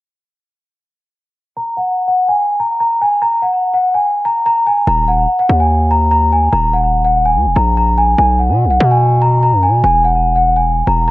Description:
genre	hip hop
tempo	145 BPM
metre	4/4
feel	half-time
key	Eb phrygian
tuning	A4 = 435 Hz
part	large celesta	melody	1.6-11.1 s	Gb5 to Bb5	-12 LUFS	equal	low-pass filter, analog delay
part	distorted 808-style bass	bass	4.9-11.1 s	Eb1 to B2	-14 LUFS	equal	distortion
room	light reverb, studio ambience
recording	echo-heavy mix, lossy compression artefacts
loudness	-11 LUFS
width	side -17 dB against mid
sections	1.6-4.9 A section; 4.9-11.1 B section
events	filter sweep on celesta 1.6-4.9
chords	1.6 N.C.; 4.9 Eb5; 8.2 B5; 9.8 Eadd9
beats	| 1.56 1.98 2.39 2.80 | 3.22 3.63 4.04 4.46 | 4.87 5.29 5.70 6.11 | 6.53 6.94 7.36 7.77 | 8.18 8.60 9.01 9.43 | 9.84 10.25 10.67 11.08

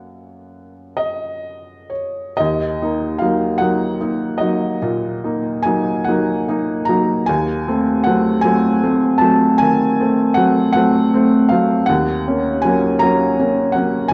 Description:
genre	classical, romantic nocturne for solo piano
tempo	41-55 BPM (dotted quarters)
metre	12/8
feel	rubato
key	Eb minor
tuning	A4 = 440 Hz
part	felt-muted upright piano	solo	0.0-14.1 s	Eb2 to Bb5	-17 LUFS	equal	none
room	wet recital hall reverb, RT60 1.6 s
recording	worn, warbling old tape, cassette tape, warbly pitch drift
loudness	-17 LUFS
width	mono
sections	0.0-2.4 A section; 2.4-14.1 B section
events	none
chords	0.0 F#; 2.4 Ebm; 7.3 Ebdim7; 11.9 D#m7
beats	0.98 | 2.39 3.61 4.82 6.07 | 7.28 8.44 9.61 10.76 | 11.89 13.02 14.12

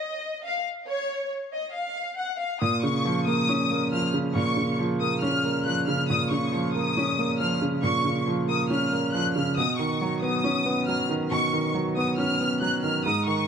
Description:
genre	hip hop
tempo	138 BPM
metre	4/4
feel	half-time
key	Bb phrygian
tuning	A4 = 440 Hz
part	warm studio violin section	melody	0.0-13.5 s	Db5 to Gb6	-27 LUFS	left 2 dB	ping-pong delay
part	felt-muted upright piano	accompaniment	2.6-13.5 s	Ab2 to Db4	-24 LUFS	right 2 dB	none
room	light reverb, small room reverb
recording	dark, warm production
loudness	-23 LUFS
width	side -7 dB against mid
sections	0.0-2.6 A section; 2.6-13.5 B section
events	none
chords	0.0 N.C.; 2.6 Bbm; 9.6 Badd9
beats	0.01 0.44 | 0.88 1.31 1.75 2.18 | 2.62 3.05 3.49 3.92 | 4.36 4.79 5.22 5.66 | 6.09 6.53 6.96 7.40 | 7.83 8.27 8.70 9.14 | 9.57 10.01 10.44 10.88 | 11.31 11.75 12.18 12.62 | 13.05

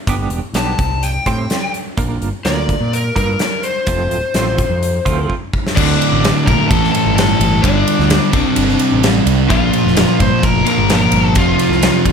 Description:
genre	quiet-loud alternative rock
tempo	128 BPM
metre	4/4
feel	straight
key	unclear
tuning	A4 = 442 Hz
part	clean electric guitar	arpeggios	0.1-5.4 s	F3 to C5	-23 LUFS	right 7 dB	tremolo
part	growling picked electric bass	bass	0.1-12.1 s	D1 to Bb2	-19 LUFS	equal	overdrive
part	big rock drum kit	drums	0.1-12.1 s	crash cymbal, hi-hat, kick drum, ride cymbal, snare drum	-18 LUFS	equal	none
part	lead guitar through a small cranked amp	melody	0.6-12.1 s	D4 to C6	-19 LUFS	left 3 dB	overdrive, slapback echo
part	overdriven semi-hollow guitar	riff	5.8-12.1 s	D2 to C4	-17 LUFS	left 12 dB	none
part	thick fuzz guitar	riff	5.8-12.1 s	D2 to C4	-17 LUFS	right 12 dB	distortion
room	light reverb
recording	none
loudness	-12 LUFS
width	side -6 dB against mid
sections	0.0-5.8 A section; 5.8-12.1 B section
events	drum fill 5.3-5.8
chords	0.1 G; 0.8 C; 2.0 Bb; 3.9 F; 5.8 D5; 6.7 A5; 7.6 G5; 8.3 C5; 9.5 Bb5; 11.4 F5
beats	| 0.07 0.55 1.02 1.50 | 1.98 2.45 2.92 3.40 | 3.87 4.35 4.82 5.29 | 5.76 6.23 6.70 7.17 | 7.63 8.10 8.57 9.03 | 9.50 9.96 10.43 10.89 | 11.36 11.83

